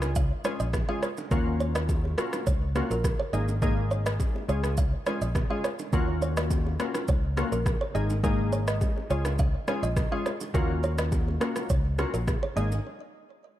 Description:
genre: afrobeats.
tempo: 104 BPM.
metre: 4/4.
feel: straight.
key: Eb minor.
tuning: A4 = 439 Hz.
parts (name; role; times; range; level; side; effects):
glassy digital keys; accompaniment; 0.0-12.8 s; Ab3 to Ab4; -32 LUFS; left 2 dB; chorus.
fingered electric bass; bass; 0.0-12.8 s; Ab1 to Eb2; -28 LUFS; equal; none.
deep house drum kit; drums; 0.0-12.8 s; kick drum, rim click, shaker; -29 LUFS; equal; overdrive.
bongos and congas; percussion; 0.0-12.8 s; none; -39 LUFS; right 4 dB; none.
kalimba; riff; 0.2-12.6 s; Ab4 to F5; -34 LUFS; right 3 dB; ping-pong delay.
room: little or no reverb.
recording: dark, warm production.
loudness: -25 LUFS.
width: side -13 dB against mid.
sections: 0.0-13.6 A section.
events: break 12.9-13.6.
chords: 0.0 Db; 1.3 Ebm7; 3.3 Absus2; 4.5 Db; 5.9 Ebm7; 7.9 Absus2; 9.1 Db; 10.5 Ebm7; 12.6 Absus2.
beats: 0.16 0.74 | 1.31 1.89 2.47 3.04 | 3.62 4.20 4.78 5.35 | 5.93 6.51 7.08 7.66 | 8.24 8.81 9.39 9.97 | 10.54 11.12 11.70 12.28.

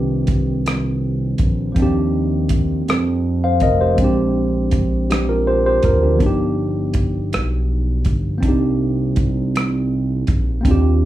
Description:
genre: slow six-eight R&B.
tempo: 54 BPM (dotted quarters).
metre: 6/8.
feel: straight.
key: unclear.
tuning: A4 = 440 Hz.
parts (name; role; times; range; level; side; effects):
tine electric piano; accompaniment; 0.0-11.1 s; Eb3 to F5; -19 LUFS; equal; overdrive, plate reverb.
smooth synth bass; bass; 0.0-11.1 s; F1 to F2; -19 LUFS; right 1 dB; none.
warm soul drum kit; drums; 0.3-10.8 s; hi-hat, kick drum, rim click; -19 LUFS; equal; none.
room: light reverb.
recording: studio reverb.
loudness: -16 LUFS.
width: side -14 dB against mid.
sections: 0.0-11.1 A section.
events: none.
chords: 0.0 Cm9; 1.8 Ebmaj13; 4.0 Bb13; 6.2 G7b13; 8.4 Cm9.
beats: 0.65 | 1.76 2.87 | 3.98 5.09 | 6.21 7.32 | 8.43 9.54 | 10.65.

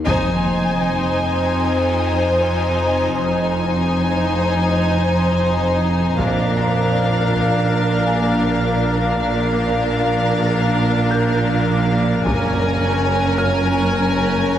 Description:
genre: cinematic, suspense film score.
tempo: 79 BPM.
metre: 4/4.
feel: straight.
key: F dorian.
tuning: A4 = 441 Hz.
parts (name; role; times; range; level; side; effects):
bowed-like drone; drone; 0.0-14.6 s; Gb1 to F2; -25 LUFS; left 1 dB; built-in reverb, phaser.
warm symphonic violin section; melody; 0.1-14.6 s; F5 to Ab5; -26 LUFS; left 2 dB; none.
rich chamber violin section; second line; 0.1-14.6 s; Bb4 to C5; -25 LUFS; equal; none.
rich chamber viola section; accompaniment; 0.1-14.6 s; Db4 to Eb4; -24 LUFS; left 1 dB; none.
evolving wavetable pad; sustained chords; 0.5-14.6 s; Bb4 to Ab5; -24 LUFS; equal; chorus, built-in reverb, phaser.
rich chamber double bass section; bass; 0.1-14.6 s; F1 to Bb1; -23 LUFS; right 2 dB; none.
rich symphonic cello section; bass; 0.1-14.6 s; F2 to Bb2; -23 LUFS; right 2 dB; none.
taiko ensemble; drums; 0.1-13.7 s; none; -27 LUFS; left 1 dB; none.
impact; sound effects; 0.1-3.2 s; none; -28 LUFS; left 1 dB; none.
warm baby grand piano; texture; 0.1-14.6 s; F4 to G6; -32 LUFS; left 2 dB; none.
rich chamber violin section; texture; 12.3-14.6 s; Gb6 to Bb6; -32 LUFS; left 2 dB; none.
room: wet scoring stage reverb, RT60 1.8 s.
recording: heavily compressed radio sound, multiband compression.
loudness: -16 LUFS.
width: side -10 dB against mid.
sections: 0.1-14.6 A section.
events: band accent 0.1-0.8; impact 0.1-3.2.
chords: 0.1 Fm7; 6.2 Bb; 12.3 Gbadd9.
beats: | 0.07 0.85 1.62 2.39 | 3.15 3.92 4.68 5.43 | 6.19 6.95 7.71 8.47 | 9.22 9.98 10.74 11.50 | 12.26 13.02 13.77 14.53.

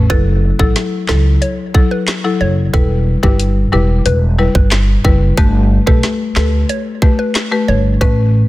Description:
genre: dancehall.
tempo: 91 BPM.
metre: 4/4.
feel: straight.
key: F# phrygian.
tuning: A4 = 437 Hz.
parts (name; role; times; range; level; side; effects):
upright bass; bass; 0.0-8.4 s; E1 to D2; -13 LUFS; equal; none.
mallet-like synth pluck; melody; 0.1-8.3 s; G4 to C#5; -23 LUFS; right 1 dB; chorus, phaser, tape echo.
buzzing marimba with medium hard mallets; accompaniment; 0.1-8.2 s; F#3 to B4; -18 LUFS; left 4 dB; none.
island pop drum kit; drums; 0.1-8.2 s; handclaps, hi-hat, kick drum, snare drum; -14 LUFS; equal; none.
room: studio reverb.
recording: dense, heavily limited modern master.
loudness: -11 LUFS.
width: side -17 dB against mid.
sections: 0.1-8.5 A section.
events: none.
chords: 0.1 F#m7; 2.7 Em; 5.4 Gadd9.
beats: | 0.10 0.76 1.42 2.08 | 2.74 3.40 4.05 4.71 | 5.37 6.03 6.69 7.35 | 8.01.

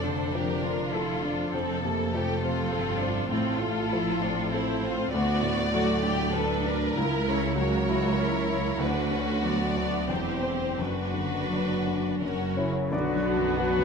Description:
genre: classical, romantic movement for piano and orchestra.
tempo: 81-102 BPM.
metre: 3/4.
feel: rubato.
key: B minor from 5.1 s.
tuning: A4 = 441 Hz.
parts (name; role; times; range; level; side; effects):
clear grand piano; melody; 0.0-13.8 s; B1 to F#5; -29 LUFS; left 3 dB; none.
rich chamber violin section; melody; 0.0-13.8 s; F#4 to D5; -34 LUFS; left 4 dB; none.
rich studio violin section; second line; 0.0-13.8 s; D4 to A#4; -33 LUFS; left 2 dB; none.
rich chamber viola section; accompaniment; 0.0-13.8 s; A3 to F#4; -33 LUFS; right 6 dB; none.
rich chamber cello section; bass; 0.0-13.8 s; C#2 to F#3; -33 LUFS; right 3 dB; none.
warm chamber double bass section; bass; 0.0-13.8 s; E1 to D2; -35 LUFS; right 6 dB; none.
concert flute; second line; 12.6-13.8 s; E4 to B4; -34 LUFS; right 1 dB; none.
warm French horn section; sustained chords; 12.6-13.8 s; C#4 to F#4; -31 LUFS; left 6 dB; none.
bright clarinet; second line; 12.9-13.8 s; F#4; -34 LUFS; left 2 dB; none.
warm oboe; second line; 12.9-13.8 s; B4; -35 LUFS; right 3 dB; none.
mellow bassoon; accompaniment; 12.9-13.8 s; B3; -36 LUFS; right 8 dB; none.
room: moderate concert hall reverb, RT60 2.1 s.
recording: none.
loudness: -25 LUFS.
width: side -5 dB against mid.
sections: 0.0-12.9 A section.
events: none.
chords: 0.0 Dm/F; 1.5 F; 3.3 F/A; 5.1 D; 7.0 F#7/C#; 8.8 Bm/D; 10.1 C/E; 10.8 Bm/F#; 12.2 F#; 12.9 Bm.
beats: 0.33 0.93 | 1.53 2.14 2.73 | 3.32 3.92 4.54 | 5.13 5.73 6.34 | 6.97 7.58 8.20 | 8.80 9.44 10.10 | 10.79 11.51 12.22 | 12.93 13.58.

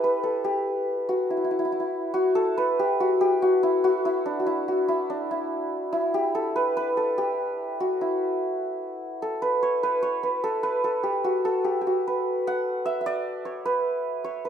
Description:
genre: indian classical.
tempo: 145 BPM.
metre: 4/4.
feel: straight.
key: E raga kafi.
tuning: A4 = 440 Hz.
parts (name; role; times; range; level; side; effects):
santur; solo; 0.0-14.5 s; D4 to F#5; -23 LUFS; equal; none.
room: light reverb.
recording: minimal, uncompressed stereo recording.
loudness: -23 LUFS.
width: side -8 dB against mid.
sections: 0.0-1.3 A section; 1.3-14.5 B section.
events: speeding up 0.0-14.5.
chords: none.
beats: 0.01 0.44 0.87 | 1.30 1.72 2.15 2.57 | 2.99 3.42 3.84 4.26 | 4.68 5.09 5.51 5.93 | 6.34 6.76 7.17 7.59 | 8.00 8.41 8.82 9.23 | 9.64 10.05 10.45 10.86 | 11.26 11.66 12.07 12.47 | 12.87 13.27 13.67 14.06 | 14.46.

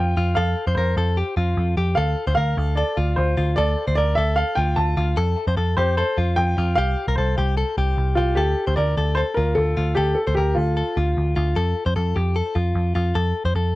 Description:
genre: jangly indie pop.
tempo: 150 BPM.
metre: 4/4.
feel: straight.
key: F major.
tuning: A4 = 440 Hz.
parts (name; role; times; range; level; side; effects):
warm upright piano; melody; 0.0-11.3 s; F4 to A5; -24 LUFS; equal; none.
direct-recorded clean electric guitar; arpeggios; 0.0-13.8 s; F4 to C5; -26 LUFS; left 3 dB; none.
vintage muted picked electric bass; bass; 0.0-13.7 s; C2 to F2; -21 LUFS; equal; none.
room: little or no reverb.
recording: dry, close 1970s-style studio recording.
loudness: -19 LUFS.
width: side -18 dB against mid.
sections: 0.0-8.4 A section; 8.4-13.8 B section.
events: none.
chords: 0.0 Fadd9; 2.0 Dm; 5.2 Fadd9; 6.8 Csus4; 8.4 Dm; 11.6 F.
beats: | 0.37 0.77 1.17 1.57 | 1.97 2.37 2.77 3.17 | 3.58 3.98 4.38 4.78 | 5.18 5.58 5.98 6.38 | 6.78 7.17 7.57 7.97 | 8.37 8.77 9.17 9.57 | 9.97 10.37 10.77 11.17 | 11.56 11.96 12.36 12.76 | 13.16 13.56.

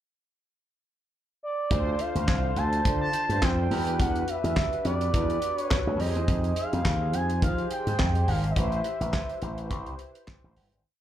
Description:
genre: early-eighties boogie funk.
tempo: 105 BPM.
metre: 4/4.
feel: swing 56% on 16ths.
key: D dorian.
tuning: A4 = 440 Hz.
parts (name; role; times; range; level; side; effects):
expressive synth lead; melody; 1.4-10.3 s; D5 to A5; -30 LUFS; right 2 dB; chorus, slapback echo, plate reverb.
mellow synth brass; accompaniment; 1.7-10.8 s; D4 to C5; -34 LUFS; left 1 dB; chorus, plate reverb, slapback echo.
slap bass with an envelope filter; bass; 1.7-10.8 s; G1 to F3; -27 LUFS; equal; none.
damped 70s drum kit; drums; 1.7-10.8 s; handclaps, hi-hat, kick drum, snare drum; -28 LUFS; equal; none.
room: light reverb.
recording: live gig heard through the venue's PA, club reverb.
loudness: -24 LUFS.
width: side -11 dB against mid.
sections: 0.0-1.7 pickup bar; 1.7-10.8 verse.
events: fade-out 8.6-10.8.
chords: 0.0 N.C.; 1.7 Dm7; 3.7 Em9; 6.0 Fm9; 8.6 Am9.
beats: 0.56 1.14 | 1.71 2.28 2.85 3.42 | 3.99 4.56 5.14 5.71 | 6.28 6.85 7.42 7.99 | 8.56 9.14 9.71 10.28.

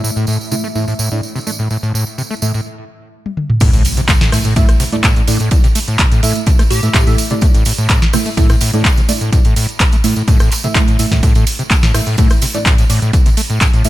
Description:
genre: acid house.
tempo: 126 BPM.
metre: 4/4.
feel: straight.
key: A minor.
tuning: A4 = 438 Hz.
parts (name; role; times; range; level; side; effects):
string machine, full ensemble; sustained chords; 0.0-2.6 s; A3 to E5; -29 LUFS; left 2 dB; ensemble chorus, sidechain pumping.
overdriven acid bass; riff; 0.0-13.9 s; A2 to A3; -18 LUFS; equal; distortion, tube saturation, analog chorus.
tambourine; percussion; 0.0-13.9 s; none; -24 LUFS; right 4 dB; none.
deep mellow chord stab; stabs; 0.5-13.9 s; A3 to E5; -21 LUFS; right 2 dB; chorus, phaser, tape echo.
booming analog drum machine; drums; 3.3-13.9 s; crash cymbal, handclaps, hi-hat, rim click, snare drum, toms; -19 LUFS; equal; low-pass filter on cymbals, low-pass filter on toms, low-pass filter on hats, low-pass filter on snare.
electronic kick drum; drums; 3.6-13.7 s; none; -12 LUFS; equal; none.
open jazz drum kit; drums; 3.6-13.9 s; hi-hat, ride cymbal, snare drum; -28 LUFS; right 2 dB; sidechain pumping on cymbals, high-pass filter on cymbals, sidechain pumping on hats, high-pass filter on hats, high-pass filter on snare, high-pass filter on room.
impact; sound effects; 3.6-5.5 s; none; -21 LUFS; equal; none.
plucky unison lead; melody; 6.7-7.1 s; G4; -27 LUFS; right 2 dB; dub echo.
room: little or no reverb.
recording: none.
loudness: -11 LUFS.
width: side -15 dB against mid.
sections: 0.0-3.6 A section; 3.6-13.9 B section.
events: filter sweep on acid bass 0.0-3.6; break 2.7-3.6; drum fill 3.3-3.6; drop 3.6-13.9; impact 3.6-5.5.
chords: 0.0 A5.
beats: 0.28 0.75 1.23 | 1.71 2.18 2.66 3.13 | 3.61 4.09 4.56 5.04 | 5.51 5.99 6.47 6.94 | 7.42 7.90 8.37 8.85 | 9.32 9.80 10.28 10.75 | 11.23 11.71 12.18 12.66 | 13.13 13.61.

